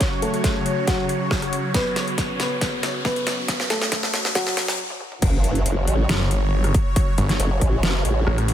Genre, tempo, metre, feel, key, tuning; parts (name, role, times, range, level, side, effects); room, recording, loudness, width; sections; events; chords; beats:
heavy wobble dubstep; 138 BPM; 4/4; half-time; F# minor; A4 = 441 Hz
dark baby grand piano; melody; 0.0-4.8 s; F#3 to C#5; -27 LUFS; equal; low-pass filter, dub echo
supersaw pad; sustained chords; 0.0-8.5 s; C#3 to C#5; -28 LUFS; equal; phaser, sidechain pumping
dubstep drum kit; drums; 0.0-8.5 s; crash cymbal, hi-hat, rim click, snare drum, toms; -26 LUFS; equal; overdrive, high-pass filter on hats, high-pass filter on toms, high-pass filter on snare, high-pass filter on cymbals, high-pass filter on room
electronic kick drum; drums; 0.0-7.7 s; -22 LUFS; equal; overdrive
riser and impact; sound effects; 0.0-7.0 s; -30 LUFS; equal
formant-sweep wobble bass; bass; 5.2-8.2 s; F#1 to A1; -20 LUFS; equal; chorus, overdrive
snarling distorted saw bass; bass; 6.1-8.5 s; F#1 to A1; -20 LUFS; equal; distortion, overdrive
light reverb; high-pass filter; -19 LUFS; side -10 dB against mid
0.0-5.2 A section; 5.2-8.5 B section
build-up 0.0-5.2; drum fill 0.0-4.8, 4.9-5.2; riser 0.0-4.8; filter sweep on grand piano 0.0-5.2; filter sweep 0.0-5.2; stop 4.8-5.2; drop 5.2-8.5; impact 5.2-7.0
0.0 F#5
| 0.01 0.44 0.88 1.31 | 1.75 2.18 2.62 3.05 | 3.48 3.92 4.35 4.79 | 5.22 5.66 6.09 6.53 | 6.96 7.40 7.83 8.27